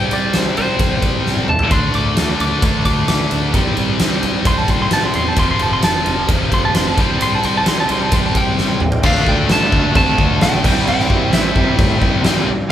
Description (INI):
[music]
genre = hard rock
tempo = 131 BPM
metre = 4/4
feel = straight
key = unclear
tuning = A4 = 437 Hz
[part]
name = lightly driven lead guitar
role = melody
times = 0.0-12.2 s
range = C5 to D6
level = -20 LUFS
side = equal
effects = none
[part]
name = heavy high-gain guitar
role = riff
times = 0.0-12.7 s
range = F2 to D4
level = -22 LUFS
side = right 6 dB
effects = distortion
[part]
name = scooped high-gain guitar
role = riff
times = 0.0-12.5 s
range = F2 to D4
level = -20 LUFS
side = left 7 dB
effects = distortion
[part]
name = fuzz fingered electric bass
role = bass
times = 0.0-12.7 s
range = F1 to D3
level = -23 LUFS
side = equal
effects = overdrive
[part]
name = huge arena drum kit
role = drums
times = 0.1-12.4 s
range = crash cymbal, kick drum, ride cymbal, snare drum, toms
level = -17 LUFS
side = equal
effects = none
[part]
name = cranked stack guitar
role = riff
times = 9.0-12.5 s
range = C3 to F4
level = -23 LUFS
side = right 1 dB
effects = overdrive, tremolo
[sound]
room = moderate large studio reverb, RT60 1.2 s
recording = band playing live in one room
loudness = -13 LUFS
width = side -11 dB against mid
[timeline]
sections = 0.0-9.0 A section; 9.0-12.7 B section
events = lead electric guitar solo 0.0-9.0; drum fill 1.3-1.7, 8.6-9.0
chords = 0.0 C5; 1.7 D5; 3.5 C5; 5.4 F; 7.0 C5; 9.0 Dm; 10.7 C